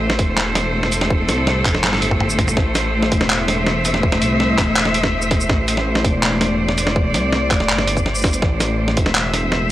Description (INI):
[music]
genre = half-time drum and bass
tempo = 164 BPM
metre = 4/4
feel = half-time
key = A minor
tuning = A4 = 440 Hz
[part]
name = rich symphonic cello section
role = sustained chords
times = 0.0-9.7 s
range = A2 to E5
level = -19 LUFS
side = left 1 dB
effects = sidechain pumping
[part]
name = dark detuned saw bass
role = bass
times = 0.0-9.7 s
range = E1 to C2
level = -22 LUFS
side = equal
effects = tube saturation
[part]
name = boom bap sampler-style drum kit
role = drums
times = 0.1-9.6 s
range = handclaps, hi-hat, shaker, snare drum, toms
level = -20 LUFS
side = equal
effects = none
[part]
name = electronic kick drum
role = drums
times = 0.2-9.0 s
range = none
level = -19 LUFS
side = equal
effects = none
[sound]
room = little or no reverb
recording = dry, gritty hardware recording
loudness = -15 LUFS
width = side -14 dB against mid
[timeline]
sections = 0.0-9.7 A section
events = drum fill 1.8-2.6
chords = 0.0 Am